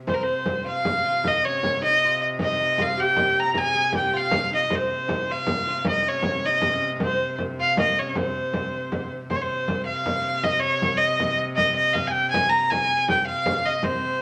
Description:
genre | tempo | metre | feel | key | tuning
medieval dance | 105 BPM (dotted quarters) | 6/8 | straight | C phrygian | A4 = 437 Hz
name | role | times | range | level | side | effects
rich viola da gamba | drone | 0.0-14.2 s | C3 | -37 LUFS | equal | none
rich fiddle | melody | 0.1-14.2 s | Bb4 to Bb5 | -24 LUFS | equal | none
oud | second line | 0.1-9.1, 13.8-14.2 s | C4 to Ab4 | -34 LUFS | equal | none
frame drum | percussion | 0.1-14.1 s | none | -31 LUFS | equal | none
room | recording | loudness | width
wet studio reverb, RT60 0.9 s | none | -23 LUFS | mono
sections
0.1-9.3 A section; 9.3-14.2 A section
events
none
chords
none

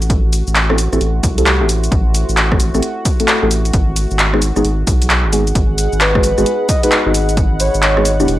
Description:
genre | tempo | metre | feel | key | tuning
UK garage, two-step garage | 132 BPM | 4/4 | swing 64% on 16ths | unclear | A4 = 440 Hz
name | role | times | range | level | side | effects
warm analog pad | sustained chords | 0.0-8.4 s | F#4 to F#5 | -28 LUFS | equal | chorus, sidechain pumping
saturated sub bass | bass | 0.0-8.4 s | E1 to C2 | -16 LUFS | equal | tube saturation
house drum kit | drums | 0.0-8.4 s | handclaps, hi-hat, rim click, shaker | -17 LUFS | equal | overdrive
deep dark ambient pad | texture | 0.3-8.4 s | E4 to C6 | -26 LUFS | equal | chorus, built-in reverb, sidechain pumping
electronic kick drum | drums | 0.1-7.5 s | none | -16 LUFS | equal | none
deep mellow chord stab | stabs | 0.7-8.3 s | G3 to A4 | -19 LUFS | equal | chorus, tape echo
breathy flute-like synth lead | melody | 6.0-8.1 s | B4 to D#5 | -18 LUFS | equal | chorus, cassette tape, tape echo
room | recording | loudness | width
light reverb | dry, gritty hardware recording | -12 LUFS | side -14 dB against mid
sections
0.0-8.4 A section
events
none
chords
0.0 Am7; 3.7 G#m7

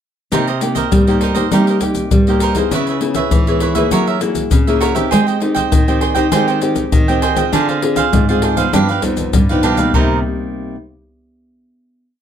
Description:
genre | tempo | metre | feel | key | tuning
samba and choro | 100 BPM | 4/4 | straight | C minor | A4 = 439 Hz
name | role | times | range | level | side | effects
cavaquinho | accompaniment | 0.3-10.2 s | D4 to G5 | -19 LUFS | right 8 dB | none
nylon-string guitar | accompaniment | 0.3-10.8 s | G2 to Ab4 | -18 LUFS | left 2 dB | none
nylon-string guitar | bass | 0.3-10.2 s | F2 to Ab3 | -18 LUFS | right 1 dB | none
maracas, surdo and pandeiro | percussion | 0.3-10.1 s | none | -17 LUFS | left 2 dB | none
room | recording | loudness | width
moderate small room reverb, RT60 0.5 s | none | -12 LUFS | side -9 dB against mid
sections
0.3-9.9 A section; 9.9-12.2 final chord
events
none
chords
0.3 Cm7; 2.7 Dbm7; 3.9 F#9; 5.1 Abmaj7; 7.5 Dm7b5; 8.7 G7b13; 9.9 Cm7

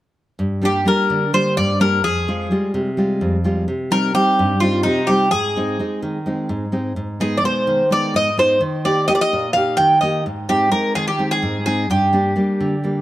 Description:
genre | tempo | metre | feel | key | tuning
greek folk | 255 BPM (eighths) | 7/8 | straight | G phrygian | A4 = 440 Hz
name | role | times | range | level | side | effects
nylon-string guitar | accompaniment | 0.4-13.0 s | F2 to G4 | -19 LUFS | equal | none
Greek bouzouki | melody | 0.7-13.0 s | Eb4 to G5 | -18 LUFS | equal | none
room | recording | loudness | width
light reverb | dark, warm production | -16 LUFS | side -14 dB against mid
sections
0.4-13.0 A section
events
none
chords
0.4 Gm; 2.0 Fmadd9; 3.7 Cm; 5.3 Ab; 7.0 Abm; 8.6 Eb; 10.3 Ab; 11.9 Gm

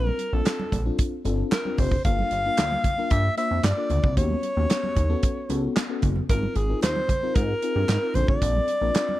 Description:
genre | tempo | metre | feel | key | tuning
early-eighties boogie funk | 113 BPM | 4/4 | straight | unclear | A4 = 439 Hz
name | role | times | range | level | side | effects
breathy alto saxophone | melody | 0.0-9.2 s | Ab4 to F5 | -26 LUFS | equal | none
FM electric piano with soft pad layer | accompaniment | 0.0-9.2 s | Bb3 to C5 | -30 LUFS | left 5 dB | chorus
chorused synth bass | bass | 0.0-8.9 s | F1 to Ab2 | -25 LUFS | equal | none
congas | percussion | 0.1-9.2 s | none | -35 LUFS | right 3 dB | none
damped 70s drum kit | drums | 0.2-9.1 s | handclaps, hi-hat, kick drum, snare drum | -25 LUFS | right 1 dB | none
room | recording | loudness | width
small room ambience | dry, close 1970s-style studio recording | -21 LUFS | side -15 dB against mid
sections
0.0-9.2 A section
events
none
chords
0.0 Bbmaj9; 2.0 Gm9; 4.2 Eb7alt; 6.3 Ab69; 8.2 Gm9 (rootless)

